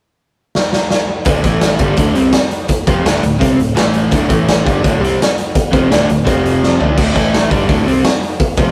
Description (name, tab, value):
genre	garage rock duo or trio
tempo	168 BPM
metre	4/4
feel	straight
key	D minor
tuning	A4 = 440 Hz
part	raw garage drum kit	drums	0.6-8.7 s	crash cymbal, hi-hat, kick drum, snare drum, toms	-16 LUFS	equal	none
part	overdriven electric guitar	riff	1.3-8.7 s	D2 to D4	-16 LUFS	equal	none
part	fingered electric bass	bass	1.3-8.7 s	D1 to D2	-23 LUFS	equal	tube saturation
room	wet studio reverb, RT60 0.6 s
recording	rough rehearsal-room recording, tube saturation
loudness	-14 LUFS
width	mono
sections	0.0-1.3 A section; 1.3-7.0 B section; 7.0-8.7 C section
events	drum fill 0.5-1.3, 6.6-7.0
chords	0.0 N.C.; 1.3 D5; 1.4 A5; 1.8 Dm; 3.8 A5; 4.1 D5; 4.3 A5; 4.7 Dm; 6.3 F5; 6.8 D5; 7.1 A5; 7.5 Dm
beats	0.19 0.55 0.91 | 1.26 1.62 1.98 2.33 | 2.69 3.05 3.41 3.76 | 4.12 4.48 4.83 5.19 | 5.55 5.90 6.26 6.62 | 6.97 7.33 7.68 8.04 | 8.40